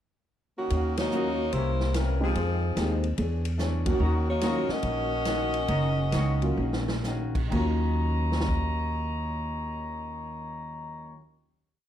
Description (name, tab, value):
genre	jazz, big band swing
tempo	124-146 BPM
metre	4/4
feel	swing 66% on 8ths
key	Eb minor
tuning	A4 = 440 Hz
part	clear saxophone section	melody	0.6-7.0 s	Eb3 to Eb5	-29 LUFS	left 1 dB	none
part	picked old ladder-braced acoustic guitar	accompaniment	0.7-11.2 s	F2 to C#5	-37 LUFS	left 4 dB	none
part	upright bass	bass	0.7-11.1 s	Gb1 to F2	-28 LUFS	equal	none
part	swinging big-band drum kit	drums	0.7-8.6 s	crash cymbal, hi-hat, kick drum, ride cymbal, snare drum	-33 LUFS	equal	none
part	warm grand piano	accompaniment	1.1-11.2 s	Eb2 to G4	-34 LUFS	right 2 dB	none
part	warm trumpet section	stabs	1.1-11.2 s	E4 to Db6	-35 LUFS	left 2 dB	none
room	light reverb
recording	dark, warm production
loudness	-25 LUFS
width	side -10 dB against mid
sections	0.0-0.7 pickup bar; 0.7-7.5 A section; 7.5-11.4 final chord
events	band accent 0.9, 3.8; slowing down 4.0-7.5; drum fill 6.6-7.0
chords	0.0 N.C.; 0.7 Ebm7; 1.5 C7b9; 2.3 Fm7; 3.2 E13; 4.0 Ebm7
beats	0.29 | 0.70 1.11 1.52 1.93 | 2.35 2.76 3.17 3.58 | 4.00 4.41 4.83 5.25 | 5.68 6.12 6.57 7.03 | 7.51 8.00 8.48 8.96 | 9.45 9.93 10.41 10.90